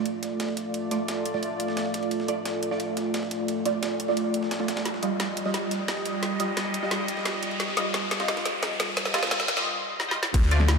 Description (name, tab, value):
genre	dark technical drum and bass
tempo	175 BPM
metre	4/4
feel	straight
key	unclear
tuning	A4 = 441 Hz
part	sweeping resonant pad	sustained chords	0.0-10.8 s	G3 to Eb5	-30 LUFS	right 1 dB	chorus, sidechain pumping
part	band-passed chord stab	stabs	0.0-10.6 s	G3 to Eb5	-31 LUFS	right 2 dB	phaser, analog chorus, ping-pong delay
part	riser	sound effects	1.6-9.7 s	none	-35 LUFS	equal	none
part	breakbeat sampler-style drum kit	drums	0.1-10.8 s	ride cymbal, snare drum	-37 LUFS	equal	high-pass filter on cymbals, high-pass filter on snare
part	drum and bass drum kit	drums	0.1-10.8 s	crash cymbal, hi-hat, snare drum	-30 LUFS	equal	high-pass filter on snare, high-pass filter on hats, high-pass filter on cymbals, high-pass filter on room
part	phased detuned saw bass	bass	10.3-10.8 s	D2	-20 LUFS	equal	phaser, sidechain pumping
part	electronic kick drum	drums	10.3-10.4 s	none	-21 LUFS	equal	none
room	wet church reverb, RT60 2.9 s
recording	dreamy mix soaked in reverb, high-pass filter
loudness	-25 LUFS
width	side -5 dB against mid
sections	0.0-10.3 A section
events	build-up 0.0-10.3; filter sweep on synth stab 0.0-10.3; filter sweep 0.0-10.3; riser 1.6-9.7; drum fill 4.9-9.7, 10.0-10.3; break 9.7-10.3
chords	0.0 Dm; 4.9 Ebadd9